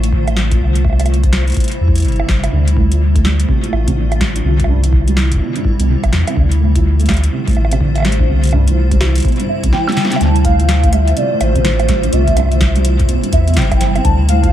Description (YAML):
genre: IDM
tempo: 125 BPM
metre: 4/4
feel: swing 62% on 16ths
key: D minor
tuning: A4 = 440 Hz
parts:
  - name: granular cloud pad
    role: sustained chords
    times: 0.0-14.5 s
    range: C3 to C5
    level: -20 LUFS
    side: left 1 dB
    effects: built-in reverb, shimmer reverb
  - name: warm sub bass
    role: bass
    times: 0.0-14.5 s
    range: G1 to E2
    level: -14 LUFS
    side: equal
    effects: tube saturation
  - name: electro analog drum machine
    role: drums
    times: 0.0-14.5 s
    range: bongos, hi-hat, snare drum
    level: -22 LUFS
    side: right 1 dB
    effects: dub echo
  - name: electronic kick drum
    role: drums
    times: 0.1-14.5 s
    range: none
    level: -16 LUFS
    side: equal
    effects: none
  - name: felt-muted upright piano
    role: arpeggios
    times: 2.5-14.5 s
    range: G2 to D4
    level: -21 LUFS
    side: right 4 dB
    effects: dub echo, shimmer reverb
  - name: warbly nostalgic lead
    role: melody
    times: 9.5-14.5 s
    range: C5 to A5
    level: -19 LUFS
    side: right 1 dB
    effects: tremolo, analog chorus, dub echo, shimmer reverb
room: light reverb, digital ambience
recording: echo-heavy mix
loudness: -11 LUFS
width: side -12 dB against mid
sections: 0.0-10.2 A section; 10.2-14.5 B section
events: drum fill 9.7-10.2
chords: 0.0 Dm7; 0.6 C; 2.5 Dm7; 4.4 C; 6.4 Dm7; 8.3 C; 10.2 Dm7; 12.1 C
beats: 0.13 | 0.61 1.09 1.57 2.05 | 2.53 3.01 3.49 3.97 | 4.45 4.93 5.41 5.89 | 6.37 6.85 7.33 7.81 | 8.29 8.77 9.25 9.73 | 10.21 10.69 11.17 11.65 | 12.13 12.61 13.09 13.57 | 14.05